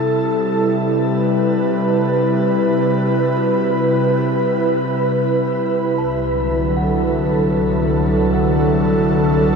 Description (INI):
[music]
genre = ambient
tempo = free time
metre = none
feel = none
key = C lydian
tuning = A4 = 441 Hz
[part]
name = airy breathy pad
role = sustained chords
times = 0.0-9.6 s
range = C2 to B4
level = -15 LUFS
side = equal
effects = chorus
[part]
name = small celesta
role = arpeggios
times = 0.6-9.6 s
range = F#4 to A5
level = -35 LUFS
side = equal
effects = none
[sound]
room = wet shimmer reverb, RT60 8.0 s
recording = none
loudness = -15 LUFS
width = side -5 dB against mid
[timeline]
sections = 0.0-9.6 A section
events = none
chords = 0.0 Cmaj7; 6.0 Dadd9/C